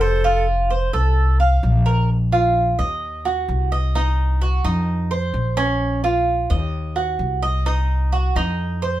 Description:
latin, Cuban son and guajira; 129 BPM; 4/4; straight; Bb harmonic minor; A4 = 440 Hz
breathy mellow silver concert flute; melody; 0.0-0.5 s; A4; -21 LUFS; equal
Cuban tres; arpeggios; 0.0-9.0 s; Db4 to F5; -21 LUFS; right 2 dB
upright bass; bass; 0.0-9.0 s; F1 to F2; -19 LUFS; equal
moderate studio ambience, RT60 0.5 s; band playing live in one room; -17 LUFS; side -14 dB against mid
0.0-2.1 A section; 2.1-9.0 B section
0.2 F; 2.1 Bb5; 3.0 Ebm; 3.9 Cdim; 4.9 F5; 5.8 Bbm; 6.7 Ebm; 7.7 Cdim

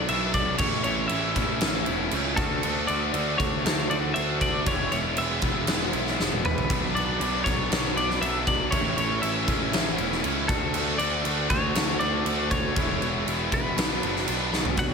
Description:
quiet-loud alternative rock; 118 BPM; 4/4; straight; B dorian; A4 = 442 Hz
twelve-string electric guitar; melody; 0.0-14.9 s; A4 to F#5; -30 LUFS; left 1 dB; analog delay
heavy high-gain guitar; riff; 0.0-14.9 s; A2 to F#4; -30 LUFS; left 11 dB; distortion, slapback echo
overdriven electric guitar; riff; 0.0-14.8 s; A2 to F#4; -32 LUFS; right 12 dB; slapback echo
fuzz picked electric bass; bass; 0.0-14.9 s; E1 to D2; -31 LUFS; equal; overdrive
huge arena drum kit; drums; 0.1-14.9 s; crash cymbal, kick drum, snare drum, toms; -27 LUFS; equal
tonewheel organ; sustained chords; 6.7-14.8 s; D4 to B5; -40 LUFS; left 1 dB
picked steel-string acoustic guitar; arpeggios; 14.8-14.9 s; B2 to F#4; -31 LUFS; right 1 dB
moderate lush hall reverb, RT60 2.2 s; big arena sound; -23 LUFS; side -5 dB against mid
0.0-14.8 A section
drum fill 6.2-6.7, 14.5
0.0 Bm; 0.6 A; 2.4 D; 4.7 E; 6.7 Bm; 8.7 A; 10.5 D; 12.8 Eadd9; 13.8 Bm

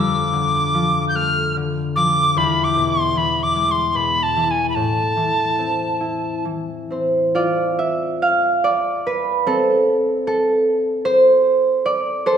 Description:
celtic folk; 66-76 BPM; 3/4; rubato; A4 = 440 Hz
mid whistle; melody; 0.0-6.4 s; G#5 to G6; -19 LUFS; equal
concert harp; accompaniment; 0.0-12.4 s; E2 to F5; -18 LUFS; equal
wet scoring stage reverb, RT60 1.6 s; minimal, uncompressed stereo recording; -16 LUFS; side -8 dB against mid
0.0-7.3 A section; 7.3-12.4 B section
harp solo 7.3-12.4
0.0 Dm/F; 2.4 E; 4.8 Am; 7.3 Dm13/C; 9.9 N.C.

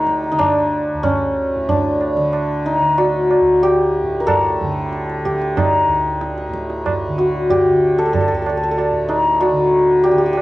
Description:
indian classical, Hindustani; 93 BPM; 5/4; straight; A4 = 440 Hz
santur; melody; 0.0-10.4 s; C#4 to Bb4; -16 LUFS; left 1 dB
tanpura; drone; 0.0-10.4 s; D2 to D3; -24 LUFS; right 1 dB
tabla; percussion; 0.1-10.4 s; -22 LUFS; right 4 dB
moderate studio reverb, RT60 0.6 s; worn, warbling old tape, cassette tape, warbly pitch drift; -14 LUFS; side -17 dB against mid
0.0-10.4 A section

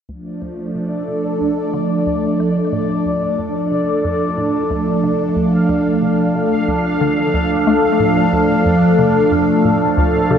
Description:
ambient, sequencer-driven space music; 91 BPM; 4/4; straight; D minor; A4 = 440 Hz
phased analog pad; sustained chords; 0.1-10.4 s; F3 to A4; -16 LUFS; equal; phaser, chorus
hollow square pluck; riff; 0.1-10.4 s; D2 to A3; -23 LUFS; left 1 dB; chorus, phaser, tape echo
bubbling stepped-filter texture; texture; 0.1-10.4 s; D4 to F5; -21 LUFS; equal; chorus, built-in reverb
wet cathedral reverb, RT60 5.4 s; in a vast, echoing space, nothing above 10.3 kHz; -14 LUFS; side -8 dB against mid
0.1-10.4 A section
fade-in on synth arpeggio sound 0.1-10.4; filter sweep on analog synth pad 0.1-10.4
0.1 Dm

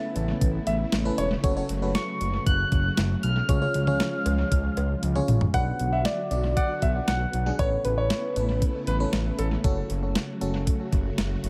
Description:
synth-pop; 117 BPM; 4/4; straight; F# minor; A4 = 442 Hz
bright concert grand piano; second line; 0.0-1.3, 5.5-9.5 s; A4 to F#5; -35 LUFS; equal; analog delay
FM electric piano; accompaniment; 0.0-11.1 s; C#4 to D5; -35 LUFS; equal; chorus, phaser, analog delay
string machine, violas; sustained chords; 0.0-11.5 s; C#3 to F#4; -35 LUFS; equal; ensemble chorus
smooth synth bass; bass; 0.2-11.5 s; E1 to C#2; -29 LUFS; equal
clean 12-bit digital drum machine; drums; 0.2-11.5 s; cowbell, hi-hat, kick drum, snare drum, toms; -29 LUFS; equal; analog delay
soft struck synth lead; melody; 1.9-9.4 s; B4 to F#6; -33 LUFS; equal; chorus, phaser, analog delay
light reverb, digital ambience; echo-heavy mix; -25 LUFS; mono
0.0-5.5 A section; 5.5-11.5 B section
drum fill 5.0-5.5
0.0 Aadd9; 1.4 F#m; 3.5 C#; 5.5 Bm; 7.6 Aadd9; 9.6 F#m

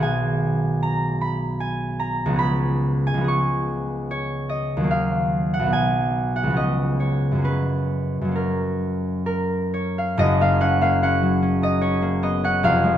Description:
classical, solo harp piece; 65-77 BPM; 3/4; rubato; F# major; A4 = 438 Hz
concert harp; solo; 0.0-13.0 s; E#1 to C#6; -19 LUFS; equal
wet recital hall reverb, RT60 1.7 s; minimal, uncompressed stereo recording; -20 LUFS; side -10 dB against mid
0.0-10.2 A section; 10.2-13.0 B section
0.0 G#m/B; 2.4 C#7; 4.9 D#m; 5.7 G#m7/B; 6.6 C#7; 7.4 F#

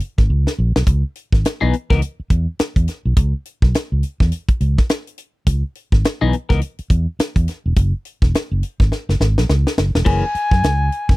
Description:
funk; 104 BPM; 4/4; swing 60% on 16ths; C# dorian; A4 = 440 Hz
tight funk drum kit; drums; 0.0-11.2 s; crash cymbal, hi-hat, kick drum, snare drum; -17 LUFS; equal
fingered electric bass; bass; 0.2-11.2 s; E1 to F#2; -17 LUFS; equal
clean electric guitar; accompaniment; 1.6-2.0, 6.2-10.2 s; E3 to A#4; -19 LUFS; left 6 dB; phaser
mellow silver concert flute; melody; 10.0-11.2 s; G#5; -20 LUFS; left 2 dB
little or no reverb; dry, close 1970s-style studio recording; -16 LUFS; side -20 dB against mid
0.0-10.1 A section; 10.1-11.2 B section
drum fill 0.3-0.9, 8.9-10.1
0.0 F#add9 (rootless); 0.9 C#m9; 7.8 F#7sus2; 10.1 F#9

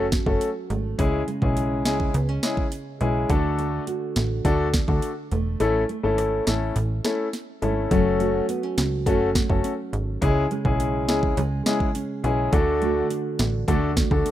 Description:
dancehall; 104 BPM; 4/4; straight; F# minor; A4 = 440 Hz
warm baby grand piano; accompaniment; 0.0-14.3 s; G#3 to A4; -24 LUFS; left 3 dB
nylon-string guitar; arpeggios; 0.0-14.3 s; C#3 to G#4; -29 LUFS; right 2 dB
plucky analog bass; bass; 0.0-14.2 s; E1 to D2; -25 LUFS; right 1 dB
afro-pop drum kit; drums; 0.1-14.3 s; hi-hat, kick drum, rim click, snare drum; -25 LUFS; right 1 dB; overdrive
small room reverb; rough home demo mix; -21 LUFS; side -12 dB against mid
0.0-7.9 A section; 7.9-14.3 B section
kick muted 5.6-7.9
0.0 F#m; 1.0 C#m; 3.3 D; 5.6 A; 7.9 F#m; 10.2 C#m; 12.5 D

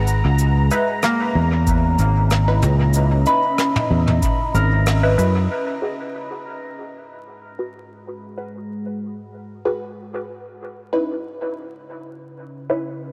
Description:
ambient dub; 94 BPM; 4/4; swing 53% on 16ths; C# dorian; A4 = 440 Hz
deep dark ambient pad; sustained chords; 0.0-13.1 s; G#3 to F#5; -32 LUFS; equal; chorus, built-in reverb
fingered electric bass; bass; 0.0-5.5 s; G#1 to F#2; -19 LUFS; equal; tube saturation
bubbling stepped-filter texture; texture; 0.0-5.5 s; A#5; -31 LUFS; equal; chorus, built-in reverb
jazz brush drum kit; drums; 0.1-5.3 s; cabasa, rim click, toms; -29 LUFS; equal; dub echo
filtered dub chord stab; stabs; 0.7-12.9 s; C#4 to B4; -29 LUFS; equal; phaser, subtle chorus, dub echo
concert harp; arpeggios; 1.0-6.7 s; A#3 to B5; -27 LUFS; equal; dub echo
electronic kick drum; drums; 1.7-4.4 s; -25 LUFS; equal
light reverb; vinyl crackle; -19 LUFS; mono
0.0-5.5 A section; 5.5-13.1 B section
band accent 4.9-5.2; filter sweep on ambient pad 5.5-13.1
0.4 C#m9; 5.5 G#m7; 10.6 C#m9

